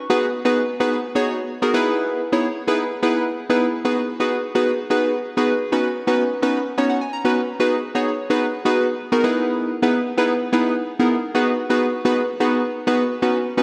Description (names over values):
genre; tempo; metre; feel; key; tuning
pop; 128 BPM; 4/4; straight; G# minor; A4 = 440 Hz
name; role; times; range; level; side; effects
warm analog keys; solo; 0.0-13.6 s; B3 to A#5; -20 LUFS; equal; chorus
room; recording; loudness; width
wet lush hall reverb, RT60 1.9 s; dreamy mix soaked in reverb; -20 LUFS; mono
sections
0.1-13.6 A section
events
drop 0.1-13.6; synth keys fill 6.7-7.6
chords
0.1 G#m7; 1.7 Emaj7; 3.8 G#m7; 5.7 Badd9; 9.2 Emaj7; 11.3 G#m7